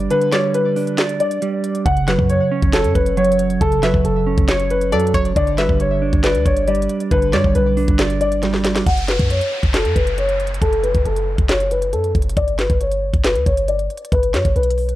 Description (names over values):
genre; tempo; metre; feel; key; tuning
hip hop, trap; 137 BPM; 4/4; half-time; F# phrygian; A4 = 438 Hz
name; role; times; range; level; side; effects
dark grand piano; melody; 0.0-15.0 s; A4 to F#5; -20 LUFS; left 2 dB; low-pass filter, tape echo
mellow electric guitar; accompaniment; 0.0-8.9 s; C#3 to D5; -20 LUFS; right 5 dB; low-pass filter
clean 808-style bass; bass; 0.0-15.0 s; F#1 to G2; -21 LUFS; equal; none
trap drum kit; drums; 0.0-15.0 s; handclaps, hi-hat, kick drum, snare drum; -20 LUFS; equal; none
string-like resonator pluck; second line; 0.3-7.5 s; C#5 to F#5; -27 LUFS; equal; chorus, tape echo
downlifter; sound effects; 8.9-12.4 s; none; -30 LUFS; equal; none
room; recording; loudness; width
light reverb, digital ambience; none; -15 LUFS; side -15 dB against mid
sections
0.0-8.9 A section; 8.9-15.0 B section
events
kick muted 0.1-1.9; drum fill 8.4-8.9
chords
0.0 G; 1.9 F#m; 5.4 G; 8.9 F#m; 12.4 G